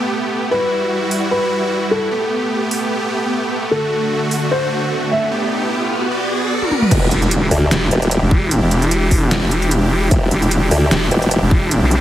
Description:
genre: heavy wobble dubstep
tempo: 150 BPM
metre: 4/4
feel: swing 54% on 16ths, half-time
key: E minor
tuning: A4 = 440 Hz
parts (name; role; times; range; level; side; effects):
- supersaw chords; sustained chords; 0.0-12.0 s; D3 to D5; -20 LUFS; right 1 dB; sidechain pumping
- dark baby grand piano; melody; 0.5-5.3 s; A4 to E5; -20 LUFS; left 1 dB; dub echo
- dubstep drum kit; drums; 1.1-12.0 s; crash cymbal, hi-hat, snare drum, toms; -20 LUFS; equal; studio reverb
- riser and impact; sound effects; 4.7-8.5 s; none; -24 LUFS; equal; none
- formant-sweep wobble bass; bass; 6.9-11.4 s; E1 to D2; -15 LUFS; equal; chorus, overdrive
- electronic kick drum; drums; 6.9-11.6 s; none; -16 LUFS; equal; studio reverb
- vowel-sweep wobble bass; bass; 7.1-12.0 s; E1 to B1; -15 LUFS; equal; chorus, overdrive
room: moderate lush hall reverb, RT60 1.5 s, digital ambience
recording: heavily compressed radio sound, multiband compression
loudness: -14 LUFS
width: side -12 dB against mid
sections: 0.0-6.9 A section; 6.9-12.0 B section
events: riser 4.7-6.9; drum fill 6.6; drop 6.9-12.0; impact 6.9-8.5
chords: 0.0 Gadd9; 0.5 Emadd9; 2.1 Gadd9; 3.7 D; 5.3 Gadd9; 6.1 Bm; 6.9 Em7

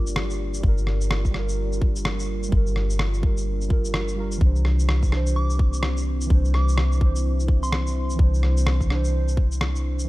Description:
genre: future garage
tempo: 127 BPM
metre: 4/4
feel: swing 60% on 16ths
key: unclear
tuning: A4 = 437 Hz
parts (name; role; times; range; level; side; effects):
- muted felt-like synth keys; accompaniment; 0.0-10.1 s; E3 to C5; -32 LUFS; right 4 dB; chorus, sidechain pumping, tape echo
- deep dark ambient pad; sustained chords; 0.0-10.1 s; Bb3 to D5; -34 LUFS; equal; chorus, built-in reverb, sidechain pumping
- soft 808-style bass; bass; 0.0-10.1 s; G1 to C2; -22 LUFS; equal; sidechain pumping
- electronic shaker and rim click; drums; 0.1-10.1 s; none; -30 LUFS; equal; overdrive, studio reverb
- electronic kick drum; drums; 0.6-9.5 s; none; -20 LUFS; equal; studio reverb
- soft synth bell; melody; 5.4-8.1 s; C6 to D6; -36 LUFS; right 1 dB; chorus, tape echo
room: digital ambience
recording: dark, warm production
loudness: -20 LUFS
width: side -18 dB against mid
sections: 0.0-10.1 A section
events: none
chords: 0.0 Gm7; 4.4 Cadd9

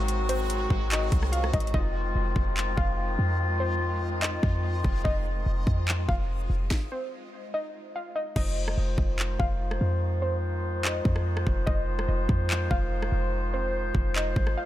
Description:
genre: hip hop, atmospheric cloud-rap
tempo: 145 BPM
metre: 4/4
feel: half-time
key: unclear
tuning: A4 = 440 Hz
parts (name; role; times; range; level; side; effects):
- warbly dusty pluck; melody; 0.0-14.7 s; C5 to F5; -35 LUFS; left 1 dB; chorus, low-pass filter, ping-pong delay
- warm woodwind section; sustained chords; 0.0-14.7 s; Eb3 to C5; -32 LUFS; left 2 dB; sidechain pumping
- warm 808-style bass; bass; 0.0-14.6 s; F1 to F2; -27 LUFS; equal; none
- backwards swelling texture; texture; 0.0-8.3 s; Ab3 to Eb5; -41 LUFS; right 2 dB; built-in reverb
- trap drum kit; drums; 0.1-14.6 s; crash cymbal, handclaps, hi-hat, kick drum, rim click, snare drum; -28 LUFS; equal; overdrive
room: digital ambience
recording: none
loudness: -25 LUFS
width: side -14 dB against mid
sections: 0.0-1.7 A section; 1.7-8.4 B section; 8.4-14.7 C section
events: stop 6.7-8.4; hi-hats muted 8.4-14.7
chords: 0.0 Ab7; 1.7 Fm7

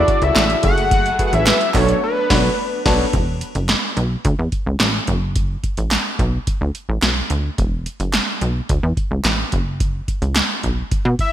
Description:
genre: early-eighties boogie funk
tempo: 108 BPM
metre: 4/4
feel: straight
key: B dorian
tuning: A4 = 440 Hz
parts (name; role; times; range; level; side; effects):
- fat analog lead; melody; 0.0-2.8, 11.2-11.3 s; B4 to F#5; -20 LUFS; left 2 dB; ping-pong delay
- analog synth brass; second line; 0.0-3.0 s; E3 to B4; -24 LUFS; right 2 dB; chorus, ping-pong delay
- barky tine electric piano; accompaniment; 0.0-3.0 s; C#3 to E5; -23 LUFS; left 1 dB; overdrive, analog chorus
- warm studio string section; sustained chords; 0.0-3.1 s; C#3 to G#4; -30 LUFS; right 1 dB; none
- plucky analog bass; bass; 0.0-11.2 s; E1 to B2; -20 LUFS; equal; none
- electro analog drum machine; drums; 0.1-11.3 s; crash cymbal, hi-hat, kick drum, snare drum; -20 LUFS; equal; gated reverb
- group handclap; percussion; 0.4-10.5 s; none; -26 LUFS; right 3 dB; none
room: light reverb, digital ambience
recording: bright 1980s-style digital production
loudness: -16 LUFS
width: side -11 dB against mid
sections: 0.0-3.1 A section; 3.1-11.3 B section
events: band accent 2.0-3.1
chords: 0.0 Dmaj9; 0.6 F#m9; 1.7 Bm9; 3.1 E5; 4.2 Dsus2; 5.1 F#m; 6.2 Bm; 7.6 E5; 8.7 Dsus2; 9.5 F#5; 10.6 N.C.

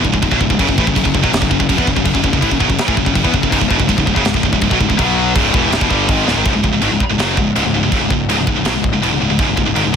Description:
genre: heavy metal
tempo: 164 BPM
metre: 4/4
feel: straight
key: C# minor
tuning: A4 = 439 Hz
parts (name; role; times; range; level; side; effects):
- heavy high-gain guitar; riff; 0.0-10.0 s; C#2 to B3; -18 LUFS; left 11 dB; distortion
- heavy high-gain guitar; riff; 0.0-9.9 s; C#2 to B3; -17 LUFS; right 14 dB; distortion
- fuzz picked electric bass; bass; 0.0-9.9 s; C#1 to E2; -21 LUFS; right 1 dB; overdrive
- tight metal drum kit; drums; 0.0-10.0 s; china cymbal, crash cymbal, kick drum, snare drum; -18 LUFS; right 1 dB; none
room: light reverb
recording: dense, heavily limited modern master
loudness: -12 LUFS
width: side -7 dB against mid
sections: 0.0-6.5 A section; 6.5-10.0 B section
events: drum fill 6.3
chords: 0.0 C#5; 0.6 F#5; 3.5 C#m; 5.0 B5; 5.4 C#m; 6.5 C#5

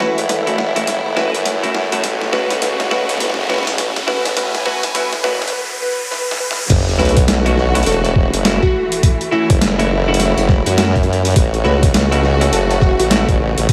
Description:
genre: glitch hop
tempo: 103 BPM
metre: 4/4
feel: swing 61% on 16ths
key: F# minor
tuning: A4 = 443 Hz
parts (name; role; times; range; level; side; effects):
- plucky unison lead; melody; 0.0-13.1 s; E4 to B4; -25 LUFS; equal; cassette tape, analog delay
- clear studio string section; sustained chords; 0.0-13.7 s; C#3 to G#5; -25 LUFS; equal; sidechain pumping
- clean electric guitar; stabs; 0.0-13.3 s; A3 to F#4; -24 LUFS; equal; lush chorus, sidechain pumping, analog delay
- boom bap sampler-style drum kit; drums; 0.0-13.7 s; crash cymbal, hi-hat, snare drum; -23 LUFS; equal; overdrive, high-pass filter on hats, small room ambience, high-pass filter on snare, high-pass filter on cymbals
- riser and sub drop; sound effects; 0.2-9.0 s; none; -27 LUFS; equal; none
- ethereal airy pad; texture; 0.0-5.5, 11.4-13.7 s; E4 to F#5; -33 LUFS; equal; none
- formant-sweep wobble bass; bass; 0.2-13.7 s; E1 to F#2; -20 LUFS; equal; chorus, high-pass filter
- electronic kick drum; drums; 6.7-13.7 s; none; -16 LUFS; equal; overdrive, small room ambience
room: moderate plate reverb, RT60 2.0 s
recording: dreamy mix soaked in reverb, high-pass filter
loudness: -16 LUFS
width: mono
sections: 0.0-6.7 A section; 6.7-13.7 B section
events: build-up 0.0-6.7; drum fill 0.0-5.5, 6.1-6.7; riser 0.2-6.7; drop 6.7-13.7; impact 6.7-9.0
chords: 0.0 F#m7; 2.0 A6; 6.7 F#m7; 11.4 A6

